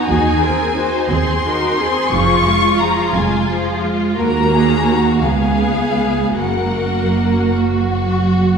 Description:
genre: classical, slow romantic movement for string orchestra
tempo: 44-60 BPM (dotted quarters)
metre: 6/8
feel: rubato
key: F# major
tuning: A4 = 440 Hz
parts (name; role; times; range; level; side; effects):
- warm studio violin section; melody; 0.0-7.5 s; E#5 to C#6; -20 LUFS; left 4 dB; none
- warm symphonic violin section; second line; 0.0-8.6 s; E#4 to B#4; -21 LUFS; left 2 dB; none
- bright symphonic viola section; accompaniment; 0.0-8.6 s; E#3 to G#4; -19 LUFS; right 2 dB; none
- rich symphonic double bass section; bass; 0.1-8.6 s; E#1 to D#2; -20 LUFS; right 2 dB; none
- warm symphonic cello section; bass; 0.1-8.6 s; C#2 to F#3; -22 LUFS; right 4 dB; none
room: wet concert hall reverb, RT60 1.9 s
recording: heard from further back in the room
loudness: -14 LUFS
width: side -6 dB against mid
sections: 0.0-8.6 A section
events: none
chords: 0.1 G#7/D#; 2.1 C#/E#; 4.2 D#m; 5.3 C#7; 6.4 F#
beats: | 0.09 1.11 | 2.13 3.15 | 4.20 5.27 | 6.39 7.57

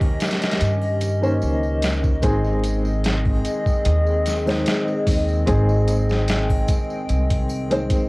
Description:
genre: trip hop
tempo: 74 BPM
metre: 4/4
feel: straight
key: unclear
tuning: A4 = 440 Hz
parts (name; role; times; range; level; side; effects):
- felt-muted upright piano; accompaniment; 0.0-8.1 s; Eb3 to C5; -24 LUFS; equal; tremolo, tape echo
- warbly tape-like pad; sustained chords; 0.0-8.1 s; C4 to G5; -26 LUFS; left 1 dB; chorus, built-in reverb
- upright bass; bass; 0.0-7.9 s; Ab1 to G2; -21 LUFS; equal; none
- boom bap sampler-style drum kit; drums; 0.0-8.1 s; hi-hat, kick drum, snare drum; -22 LUFS; equal; none
- triangle and tambourine; percussion; 0.0-8.1 s; none; -42 LUFS; right 2 dB; none
room: light reverb, studio reverb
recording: worn, warbling old tape, cassette tape, vinyl crackle, warbly pitch drift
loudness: -18 LUFS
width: side -23 dB against mid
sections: 0.0-8.1 A section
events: none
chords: 0.0 Eb7; 2.2 Ab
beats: 0.61 1.42 | 2.23 3.04 3.85 4.66 | 5.47 6.28 7.09 7.90

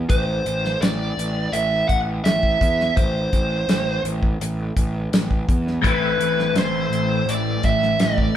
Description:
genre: psychedelic rock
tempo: 83 BPM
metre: 4/4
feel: straight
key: A minor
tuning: A4 = 439 Hz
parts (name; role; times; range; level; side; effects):
- fuzz picked electric bass; bass; 0.0-8.3 s; A1 to E2; -24 LUFS; right 1 dB; overdrive
- fuzz lead guitar; melody; 0.1-8.4 s; B4 to F#5; -22 LUFS; right 1 dB; distortion
- damped 70s drum kit; drums; 0.1-8.3 s; hi-hat, kick drum, snare drum; -21 LUFS; equal; none
- string machine, cellos; sustained chords; 5.8-8.4 s; A3 to E5; -32 LUFS; right 7 dB; none
- twelve-string electric guitar; riff; 5.8-8.4 s; A2 to E4; -23 LUFS; left 3 dB; rotary speaker
room: moderate large studio reverb, RT60 1.0 s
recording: band playing live in one room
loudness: -18 LUFS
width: side -10 dB against mid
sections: 0.0-8.4 A section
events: none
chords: 0.0 Am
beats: | 0.10 0.81 1.53 2.25 | 2.97 3.69 4.41 5.13 | 5.85 6.57 7.29 8.01

